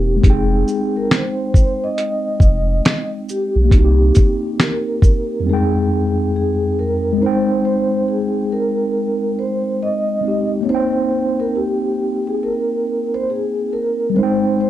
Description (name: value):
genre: lo-fi hip hop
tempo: 69 BPM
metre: 4/4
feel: swing 64% on 16ths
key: F minor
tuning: A4 = 438 Hz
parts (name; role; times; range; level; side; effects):
- vibraphone with soft mallets; melody; 0.0-14.7 s; G4 to Eb5; -20 LUFS; equal; none
- mellow tine electric piano; accompaniment; 0.0-14.7 s; F2 to G5; -19 LUFS; equal; medium stereo tremolo, cassette tape
- saturated sub bass; bass; 0.0-4.1 s; E1 to C2; -15 LUFS; equal; none
- dusty soul sampler-style drum kit; drums; 0.2-5.3 s; hi-hat, kick drum, shaker, snare drum; -13 LUFS; equal; vintage 12-bit sampler grit
room: light reverb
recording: dark, warm production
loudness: -15 LUFS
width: side -13 dB against mid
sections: 0.0-7.2 A section; 7.2-14.7 B section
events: break 5.5-7.2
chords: 0.2 Fm7; 3.7 Cm7; 5.5 Fm7; 7.2 Abmaj9; 10.7 Cm7; 14.1 Abmaj7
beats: | 0.23 1.10 1.97 2.84 | 3.71 4.58 5.45 6.32 | 7.19 8.06 8.93 9.80 | 10.67 11.54 12.41 13.28 | 14.15